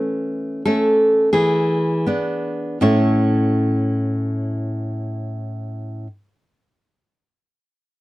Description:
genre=romantic piece for solo classical guitar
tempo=38-50 BPM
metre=3/4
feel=rubato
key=A major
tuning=A4 = 438 Hz
part: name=nylon-string guitar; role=solo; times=0.0-6.1 s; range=A2 to C#5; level=-18 LUFS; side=equal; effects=none
room=little or no reverb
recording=dry, close 1970s-style studio recording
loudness=-17 LUFS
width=side -18 dB against mid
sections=0.0-2.8 A section; 2.8-7.1 B section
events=slowing down 0.0-2.8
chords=0.0 A; 1.3 E7; 2.8 A

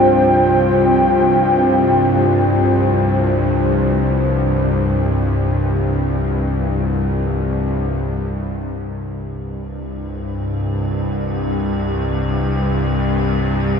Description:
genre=dark ambient drone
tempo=free time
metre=none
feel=none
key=unclear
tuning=A4 = 445 Hz
part: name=dark analog pad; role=sustained chords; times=0.0-8.3 s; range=C4 to G5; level=-17 LUFS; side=equal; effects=chorus
part: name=bowed-like drone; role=drone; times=0.0-13.8 s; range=C2 to G2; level=-17 LUFS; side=left 1 dB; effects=built-in reverb
part: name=metallic inharmonic drone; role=texture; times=10.4-13.8 s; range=G4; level=-32 LUFS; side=equal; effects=chorus, built-in reverb
room=wet lush hall reverb, RT60 2.8 s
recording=dreamy mix soaked in reverb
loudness=-15 LUFS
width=side -6 dB against mid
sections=0.0-8.3 A section; 8.3-13.8 B section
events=fade-in on synth drone 8.3-13.8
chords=0.0 F5/C; 8.3 C5

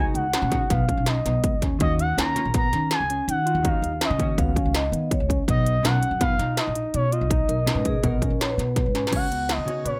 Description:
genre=progressive instrumental, band music in an uneven meter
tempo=164 BPM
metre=5/4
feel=straight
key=Db mixolydian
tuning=A4 = 440 Hz
part: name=expressive portamento lead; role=melody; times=0.0-10.0 s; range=Db5 to Bb5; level=-29 LUFS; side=equal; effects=chorus, plate reverb
part: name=hollow-body jazz guitar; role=accompaniment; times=0.0-9.9 s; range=Cb3 to Db5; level=-32 LUFS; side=equal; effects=double-tracked
part: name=overdriven tine electric piano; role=arpeggios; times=0.0-10.0 s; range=Bb3 to Cb5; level=-33 LUFS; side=equal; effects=none
part: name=upright bass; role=bass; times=0.0-10.0 s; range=Bb1 to Eb3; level=-28 LUFS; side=equal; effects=none
part: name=industrial drum kit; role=drums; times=0.2-9.9 s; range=crash cymbal, hi-hat, kick drum, snare drum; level=-28 LUFS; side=equal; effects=none
part: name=vibraphone with soft mallets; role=second line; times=4.4-9.1 s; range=Ab4 to F5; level=-32 LUFS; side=equal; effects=plate reverb, delay
room=light reverb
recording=none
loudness=-23 LUFS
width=mono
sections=0.0-9.1 A section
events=drum fill 8.9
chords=0.0 Db9sus4; 1.8 Ebm7; 5.5 Cbmaj7; 9.1 Db7sus4

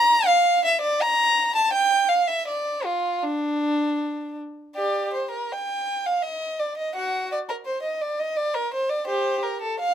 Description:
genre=classical, baroque-style suite movement for unaccompanied violin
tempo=83 BPM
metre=3/4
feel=rubato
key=D minor, G minor from 4.8 s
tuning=A4 = 444 Hz
part: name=rich violin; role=solo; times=0.0-9.9 s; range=D4 to Bb5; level=-21 LUFS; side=equal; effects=none
room=moderate studio reverb, RT60 0.8 s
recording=minimal, uncompressed stereo recording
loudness=-21 LUFS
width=side -9 dB against mid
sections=0.0-4.8 A section; 4.8-9.9 A section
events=none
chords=none

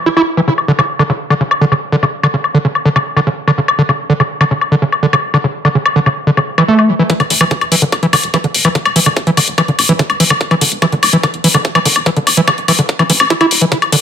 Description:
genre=psychedelic trance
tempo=145 BPM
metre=4/4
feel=straight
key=unclear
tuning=A4 = 440 Hz
part: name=overdriven acid bass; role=riff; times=0.1-14.0 s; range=C#3 to E4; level=-13 LUFS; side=right 1 dB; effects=distortion, auto-pan, sidechain pumping, digital delay
part: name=electronic woodblock and hi-hat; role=drums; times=0.2-14.0 s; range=none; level=-14 LUFS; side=left 4 dB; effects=overdrive, low-pass filter on perc, studio reverb, low-pass filter on hats
part: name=electronic kick drum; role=drums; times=7.1-13.8 s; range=none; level=-16 LUFS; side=right 1 dB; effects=high-pass filter on kick, studio reverb
part: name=plucky analog bass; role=bass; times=7.2-14.0 s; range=D1 to A1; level=-28 LUFS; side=right 1 dB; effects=none
room=moderate digital room reverb, RT60 1.1 s, digital ambience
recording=high-pass filter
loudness=-10 LUFS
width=side -8 dB against mid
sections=0.0-7.1 A section; 7.1-14.0 B section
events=build-up 7.1-14.0; drum fill 13.7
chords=0.5 D5; 7.1 N.C.

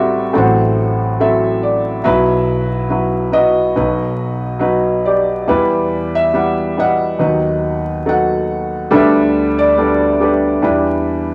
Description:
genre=acoustic folk-pop ballad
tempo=70 BPM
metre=4/4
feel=straight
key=unclear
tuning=A4 = 440 Hz
part: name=felt-muted upright piano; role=melody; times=0.0-11.3 s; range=A1 to F#5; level=-16 LUFS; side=equal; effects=none
part: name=upright bass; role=bass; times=0.0-11.3 s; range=A1 to E2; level=-25 LUFS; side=equal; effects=none
room=wet studio reverb, RT60 0.7 s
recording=vinyl crackle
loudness=-15 LUFS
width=mono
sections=0.0-11.3 A section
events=none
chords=0.3 F#m7b5/A; 2.0 Bsus4; 5.5 Em; 7.2 B/D#; 8.9 Gadd9/D; 10.6 Em7

